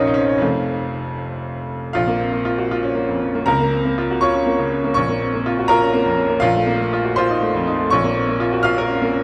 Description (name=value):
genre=classical, virtuoso piano study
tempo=80 BPM (dotted quarters)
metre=6/8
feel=uneven beats, rubato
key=Bb minor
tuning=A4 = 440 Hz
part: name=bright baby grand piano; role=solo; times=0.0-9.2 s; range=F1 to F6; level=-19 LUFS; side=equal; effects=none
room=moderate scoring stage reverb, RT60 2.0 s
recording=dark, warm production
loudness=-19 LUFS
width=mono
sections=0.0-1.9 A section; 1.9-9.2 B section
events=none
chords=0.4 F; 1.9 Bbm; 3.5 Bbm/Db; 5.0 Bbm; 6.4 F7/Bb; 7.9 Bbm